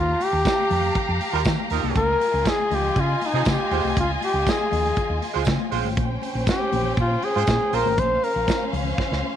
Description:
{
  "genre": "disco",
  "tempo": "120 BPM",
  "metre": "4/4",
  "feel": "straight",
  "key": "Bb dorian",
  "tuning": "A4 = 440 Hz",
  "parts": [
    { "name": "mellow flugelhorn", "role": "melody", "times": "0.0-8.7 s", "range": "Eb4 to C5", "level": "-23 LUFS", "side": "left 1 dB", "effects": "none" },
    { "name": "rich studio violin section", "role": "second line", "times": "0.0-9.4 s", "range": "Db4 to Bb5", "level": "-28 LUFS", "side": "equal", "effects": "none" },
    { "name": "warm horn section", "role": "stabs", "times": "0.0-7.9 s", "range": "F3 to C5", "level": "-28 LUFS", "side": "right 12 dB", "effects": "none" },
    { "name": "hollow-body short-scale fingered electric bass", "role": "bass", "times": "0.0-9.2 s", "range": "Ab1 to Eb3", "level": "-26 LUFS", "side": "equal", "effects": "none" },
    { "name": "modern studio drum kit", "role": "drums", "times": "0.2-9.2 s", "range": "hi-hat, kick drum, snare drum", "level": "-27 LUFS", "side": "right 1 dB", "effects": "none" },
    { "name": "congas", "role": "percussion", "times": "0.2-9.4 s", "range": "none", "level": "-33 LUFS", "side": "left 11 dB", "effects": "none" },
    { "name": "tambourine", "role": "percussion", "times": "0.5-8.6 s", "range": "none", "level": "-42 LUFS", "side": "right 14 dB", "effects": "none" }
  ],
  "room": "light reverb, studio reverb",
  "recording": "1960s-style stereo with parts hard left and right",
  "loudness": "-20 LUFS",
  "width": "side -10 dB against mid",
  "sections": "0.0-9.4 A section",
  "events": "drum fill 9.0-9.4",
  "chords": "0.0 Ebadd9; 2.0 Dbmaj9; 5.7 Bbm9"
}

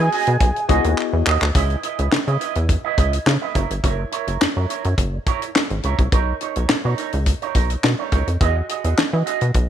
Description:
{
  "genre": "early-eighties boogie funk",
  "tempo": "105 BPM",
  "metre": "4/4",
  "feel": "straight",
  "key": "C# dorian",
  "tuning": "A4 = 441 Hz",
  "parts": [
    { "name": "fat analog lead", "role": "melody", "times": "0.0-1.0 s", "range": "G#5", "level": "-24 LUFS", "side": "right 2 dB", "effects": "chorus, tape echo" },
    { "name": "electric guitar with an envelope filter", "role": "riff", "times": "0.0-9.5 s", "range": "D#4 to D#5", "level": "-25 LUFS", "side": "right 11 dB", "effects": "lush chorus" },
    { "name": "rubbery square bass", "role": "bass", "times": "0.0-9.7 s", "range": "F#1 to E3", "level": "-20 LUFS", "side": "equal", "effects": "none" },
    { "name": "tight funk drum kit", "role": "drums", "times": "0.1-9.7 s", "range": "handclaps, hi-hat, kick drum, snare drum", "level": "-20 LUFS", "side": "left 1 dB", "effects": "none" },
    { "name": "tine electric piano", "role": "accompaniment", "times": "0.7-1.2 s", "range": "B3 to D#5", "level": "-23 LUFS", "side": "left 13 dB", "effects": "overdrive" }
  ],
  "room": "light reverb, small room ambience",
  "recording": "1960s-style stereo with parts hard left and right",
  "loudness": "-17 LUFS",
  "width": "side -10 dB against mid",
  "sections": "0.0-1.6 A section; 1.6-9.7 B section",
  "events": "drum fill 1.0-1.6",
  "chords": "0.0 Emaj9; 1.6 C#m9; 3.5 F#7; 6.1 Bmaj9; 8.4 Emaj9"
}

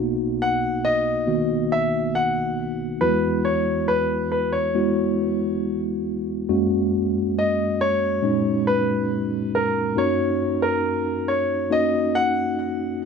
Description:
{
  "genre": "pop",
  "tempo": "69 BPM",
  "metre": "4/4",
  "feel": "straight",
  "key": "B major",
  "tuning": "A4 = 438 Hz",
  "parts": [
    { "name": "mellow tine electric piano", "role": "accompaniment", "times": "0.0-13.1 s", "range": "B1 to F#4", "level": "-22 LUFS", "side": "equal", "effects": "medium stereo tremolo" },
    { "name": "clear concert grand piano", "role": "melody", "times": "0.4-13.0 s", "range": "A#4 to F#5", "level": "-23 LUFS", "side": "left 1 dB", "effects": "none" }
  ],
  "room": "moderate studio reverb, RT60 0.6 s",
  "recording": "none",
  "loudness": "-20 LUFS",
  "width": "side -6 dB against mid",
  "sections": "0.0-13.1 A section",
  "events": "none",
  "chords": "0.0 Bmaj7; 3.0 Eadd9; 6.5 F#add9; 10.0 D#m7/F#"
}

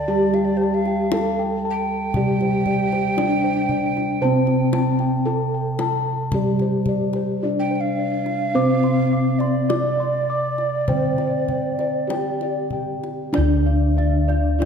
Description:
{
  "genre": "Javanese gamelan",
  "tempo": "48-58 BPM",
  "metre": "4/4",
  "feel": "straight",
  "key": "D slendro",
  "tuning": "A4 = 442 Hz",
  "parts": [
    { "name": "gamelan-type bronze metallophone", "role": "melody", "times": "0.0-14.7 s", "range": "C4-25c to D5", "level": "-23 LUFS", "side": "left 2 dB", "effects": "none" },
    { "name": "mellow hollow tenor recorder", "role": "second line", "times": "0.0-12.7 s", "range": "C5-27c to G5", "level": "-26 LUFS", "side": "right 5 dB", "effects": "none" },
    { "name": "gamelan-type bronze metallophone", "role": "accompaniment", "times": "0.0-14.7 s", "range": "C3-25c to C4-25c", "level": "-24 LUFS", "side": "right 2 dB", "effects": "none" },
    { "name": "gamelan-type bossed gongs", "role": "bass", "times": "0.0-14.7 s", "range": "D2 to C5-25c", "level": "-25 LUFS", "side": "equal", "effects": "none" },
    { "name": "gamelan-type bossed gongs", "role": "arpeggios", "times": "0.1-14.7 s", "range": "C5-25c to D6", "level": "-28 LUFS", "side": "left 6 dB", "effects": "none" },
    { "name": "kendang", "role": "percussion", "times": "0.3-14.7 s", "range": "none", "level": "-30 LUFS", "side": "left 3 dB", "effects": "none" },
    { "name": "gamelan-type bronze metallophone", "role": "arpeggios", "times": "13.4-14.7 s", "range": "D5 to F5-45c", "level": "-30 LUFS", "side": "right 5 dB", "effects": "none" }
  ],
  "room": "wet concert hall reverb, RT60 1.8 s",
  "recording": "dark, warm production",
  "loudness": "-18 LUFS",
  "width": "side -6 dB against mid",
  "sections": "0.0-13.3 A section; 13.3-14.7 B section",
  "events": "none",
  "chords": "none"
}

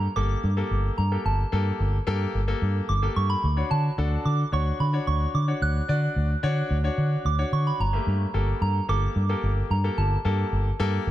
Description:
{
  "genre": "dance-pop",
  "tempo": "110 BPM",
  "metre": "4/4",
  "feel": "straight",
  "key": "unclear",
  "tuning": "A4 = 440 Hz",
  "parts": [
    { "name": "soft synth bell", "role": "melody", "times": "0.0-10.8 s", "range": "A5 to F#6", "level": "-31 LUFS", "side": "right 4 dB", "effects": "chorus, dub echo" },
    { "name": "clear concert grand piano", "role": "accompaniment", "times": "0.0-11.1 s", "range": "A3 to D5", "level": "-31 LUFS", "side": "left 3 dB", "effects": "none" },
    { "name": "vintage muted fingered electric bass", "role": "bass", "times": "0.0-11.1 s", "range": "G1 to D3", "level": "-24 LUFS", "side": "equal", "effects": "none" }
  ],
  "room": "small room ambience",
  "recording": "echo-heavy mix",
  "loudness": "-22 LUFS",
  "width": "side -13 dB against mid",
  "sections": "0.0-11.1 A section",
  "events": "none",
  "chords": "0.0 Gmadd9; 3.4 Dmaj7; 7.8 Gmadd9"
}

